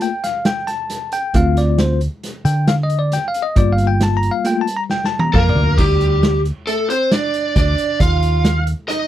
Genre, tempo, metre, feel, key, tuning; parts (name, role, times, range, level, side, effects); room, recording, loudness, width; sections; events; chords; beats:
progressive instrumental, band music in an uneven meter; 135 BPM; 5/4; straight; A4 = 441 Hz
bell-like tine electric piano; accompaniment; 0.0-5.7 s; G3 to Bb5; -19 LUFS; left 2 dB; medium stereo tremolo
vintage drum kit; drums; 0.0-9.0 s; crash cymbal, hi-hat, kick drum, snare drum, toms; -20 LUFS; equal
hollow-body short-scale picked electric bass; bass; 1.3-8.7 s; G1 to D3; -16 LUFS; equal
lead guitar through a small cranked amp; melody; 5.3-9.1 s; G4 to F5; -18 LUFS; equal; overdrive
breathy alto saxophone; second line; 5.3-9.1 s; G3 to F4; -25 LUFS; right 7 dB
little or no reverb; -15 LUFS; side -12 dB against mid
0.0-5.8 A section; 5.8-9.1 B section
tine electric piano solo 0.0-5.8; drum fill 4.9-5.8
0.0 G7(no3); 1.3 Dm7; 3.6 Gm7; 5.8 Dsus4; 8.0 Ebsus2
0.02 0.46 0.90 | 1.35 1.79 2.23 2.68 3.12 | 3.56 4.01 4.45 4.89 5.34 | 5.78 6.23 6.67 7.12 7.56 | 8.00 8.45 8.89